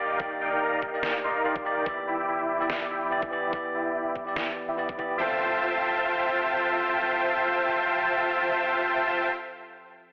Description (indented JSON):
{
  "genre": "future bass",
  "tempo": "144 BPM",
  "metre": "4/4",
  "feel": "half-time",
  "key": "F lydian",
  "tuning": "A4 = 442 Hz",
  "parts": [
    { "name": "barky tine electric piano", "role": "accompaniment", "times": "0.0-10.1 s", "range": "Eb3 to E5", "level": "-34 LUFS", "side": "equal", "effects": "sidechain pumping, tape echo" },
    { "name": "dense compressed supersaw", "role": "riff", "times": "0.0-9.3 s", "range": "Eb4 to D6", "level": "-28 LUFS", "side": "equal", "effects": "cassette tape, sidechain pumping, low-pass filter, tape echo" },
    { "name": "electronic kick drum", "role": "drums", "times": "0.2-5.1 s", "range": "none", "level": "-42 LUFS", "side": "equal", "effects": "overdrive" },
    { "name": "electronic snare drum", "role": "drums", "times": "1.0-4.5 s", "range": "none", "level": "-34 LUFS", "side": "equal", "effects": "overdrive" },
    { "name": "impact", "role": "sound effects", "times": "5.2-9.5 s", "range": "none", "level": "-49 LUFS", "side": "equal", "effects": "none" }
  ],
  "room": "moderate lush hall reverb, RT60 2.2 s",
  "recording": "telephone sound",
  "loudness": "-27 LUFS",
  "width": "mono",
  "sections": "0.0-5.2 A section; 5.2-8.5 B section",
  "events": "none",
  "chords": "0.0 Ebmaj7; 1.9 Em7; 5.2 Fmaj7",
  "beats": "| 0.20 0.61 1.03 1.45 | 1.86 2.28 2.70 3.11 | 3.53 3.95 4.36 4.78 | 5.20 5.61 6.03 6.45 | 6.86 7.28 7.70 8.11"
}